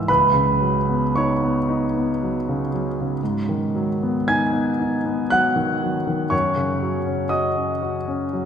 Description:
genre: classical, impressionist solo piano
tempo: 58 BPM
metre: 3/4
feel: rubato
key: unclear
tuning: A4 = 441 Hz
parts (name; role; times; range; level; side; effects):
- clear concert grand piano; solo; 0.0-8.5 s; C#2 to G#6; -19 LUFS; equal; none
room: wet church reverb, RT60 3.6 s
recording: recorded in a church or concert hall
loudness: -19 LUFS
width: side -8 dB against mid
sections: 0.0-8.5 A section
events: none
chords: 0.1 Badd9/C#; 3.2 G#m7; 6.3 F#5

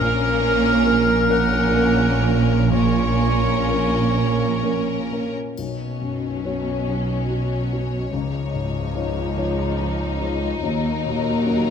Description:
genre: cinematic, emotional film score for orchestra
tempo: 40-49 BPM (dotted quarters)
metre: 6/8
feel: rubato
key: unclear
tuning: A4 = 440 Hz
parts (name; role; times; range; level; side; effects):
- clear studio violin section; melody; 0.0-11.7 s; Bb4 to C#5; -31 LUFS; left 6 dB; none
- clear clarinet; second line; 0.0-4.8 s; F4 to Bb4; -25 LUFS; left 3 dB; none
- clear oboe; second line; 0.0-5.1 s; Db5 to Gb5; -26 LUFS; right 1 dB; none
- rich studio violin section; second line; 0.0-11.7 s; Db4 to Eb4; -29 LUFS; left 3 dB; none
- dark baby grand piano; accompaniment; 0.0-11.7 s; Bb1 to C#5; -26 LUFS; left 4 dB; none
- rich studio viola section; accompaniment; 0.0-11.7 s; F3 to Bb3; -28 LUFS; right 5 dB; none
- rich chamber cello section; bass; 0.0-11.7 s; Db2 to B2; -25 LUFS; right 2 dB; none
- warm studio double bass section; bass; 0.0-11.7 s; Bb1 to Eb2; -24 LUFS; right 3 dB; none
- triangle; percussion; 5.6-7.3 s; none; -47 LUFS; left 6 dB; none
room: light reverb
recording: none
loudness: -18 LUFS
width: side -7 dB against mid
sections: 0.0-5.6 A section; 5.6-11.7 B section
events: none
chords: 0.0 Gb/Bb (rootless); 5.6 Bsus2; 8.1 Dbadd9; 10.6 Ebm

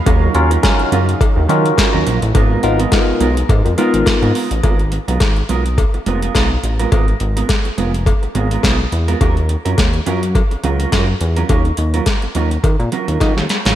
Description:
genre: early-eighties boogie funk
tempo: 105 BPM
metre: 4/4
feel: swing 56% on 16ths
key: G# dorian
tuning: A4 = 441 Hz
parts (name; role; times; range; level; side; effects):
- barky tine electric piano; accompaniment; 0.0-4.3 s; B3 to A#4; -18 LUFS; left 2 dB; phaser, slapback echo
- warm analog pad; sustained chords; 0.0-4.6 s; B2 to E#5; -26 LUFS; right 1 dB; chorus
- mellow electric guitar; riff; 0.1-13.8 s; F#3 to A#4; -21 LUFS; right 6 dB; analog chorus, slapback echo
- chorused synth bass; bass; 0.1-13.8 s; E#1 to D#3; -17 LUFS; equal; none
- booming analog drum machine; drums; 0.1-13.8 s; hi-hat, kick drum, snare drum; -16 LUFS; equal; overdrive
- cowbell; percussion; 0.1-13.4 s; none; -26 LUFS; left 7 dB; slapback echo
room: light reverb, digital ambience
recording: none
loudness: -13 LUFS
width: side -12 dB against mid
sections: 0.0-4.6 A section; 4.6-13.8 B section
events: drum fill 13.2-13.8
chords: 0.1 D#m9; 2.4 G#m69; 9.2 D#m9

